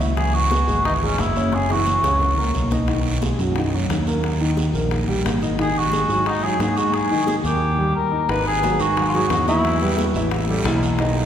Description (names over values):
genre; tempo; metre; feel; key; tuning
Afro-Cuban jazz; 177 BPM; 4/4; straight; G# minor; A4 = 439 Hz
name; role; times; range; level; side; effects
warm grand piano; accompaniment; 0.0-11.3 s; D#3 to E5; -24 LUFS; equal; none
modern bright fingered electric bass; bass; 0.0-11.3 s; F#1 to G#2; -22 LUFS; equal; none
congas; percussion; 0.0-11.3 s; none; -30 LUFS; left 2 dB; none
guiro; percussion; 0.0-11.3 s; none; -34 LUFS; right 4 dB; none
dark cor anglais; melody; 0.2-2.4, 5.6-10.1 s; C#4 to B4; -22 LUFS; equal; none
bongos; percussion; 0.2-11.3 s; none; -30 LUFS; left 3 dB; none
room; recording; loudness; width
wet church reverb, RT60 3.4 s; recorded in a church or concert hall; -18 LUFS; side -9 dB against mid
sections
0.0-8.3 A section; 8.3-11.3 B section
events
drum fill 1.5-2.9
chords
0.2 C#m7; 1.5 F#7; 2.9 B6; 4.2 D#; 5.6 G#5; 7.6 D#; 8.3 G#5; 9.6 Asus2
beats
| 0.17 0.51 0.85 1.19 | 1.53 1.86 2.20 2.54 | 2.88 3.22 3.56 3.90 | 4.23 4.57 4.91 5.25 | 5.59 5.92 6.26 6.60 | 6.94 7.28 7.62 7.95 | 8.29 8.63 8.97 9.30 | 9.64 9.98 10.32 10.65 | 10.99